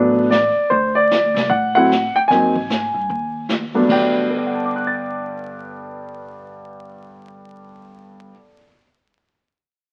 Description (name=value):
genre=jazz piano trio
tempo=151 BPM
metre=4/4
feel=swing 64% on 8ths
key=G major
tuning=A4 = 440 Hz
part: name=warm grand piano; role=melody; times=0.0-8.8 s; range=G2 to A6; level=-19 LUFS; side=equal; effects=none
part: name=upright bass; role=bass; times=0.0-8.3 s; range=G1 to A2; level=-33 LUFS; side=equal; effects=none
part: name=jazz brush drum kit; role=drums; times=0.3-4.2 s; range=brushed snare drum, crash cymbal, hi-hat, kick drum, snare drum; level=-28 LUFS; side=equal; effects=none
room=light reverb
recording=very old 78 rpm record, vinyl crackle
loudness=-18 LUFS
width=mono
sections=0.0-3.9 A section; 3.9-7.1 B section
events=none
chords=0.0 E9sus4 (rootless); 0.7 D7; 2.3 Ab7(no3); 3.9 Gmaj7